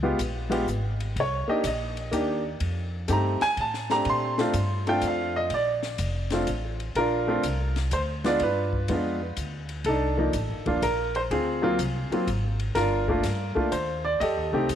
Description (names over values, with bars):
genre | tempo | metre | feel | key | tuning
jazz piano trio | 124 BPM | 3/4 | swing 67% on 8ths | Bb major | A4 = 440 Hz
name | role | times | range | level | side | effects
warm baby grand piano | melody | 0.0-14.8 s | F3 to C6 | -25 LUFS | equal | tape echo
upright bass | bass | 0.0-14.8 s | Eb1 to Bb2 | -30 LUFS | equal | none
compact cocktail drum kit | drums | 0.2-14.8 s | hi-hat, kick drum, ride cymbal, snare drum | -37 LUFS | left 3 dB | none
room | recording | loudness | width
moderate echo chamber reverb, RT60 2.3 s | 1960s-style stereo | -24 LUFS | side -9 dB against mid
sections
0.0-7.0 A section; 7.0-14.8 B section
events
grand piano solo 0.0-7.0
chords
0.0 Db7#11; 1.2 Cm9; 2.6 F7; 4.1 Bbmaj7; 7.0 Bbadd9; 8.4 G7b9; 9.9 Cm11; 11.3 Dm7; 12.8 Gm9; 14.2 F9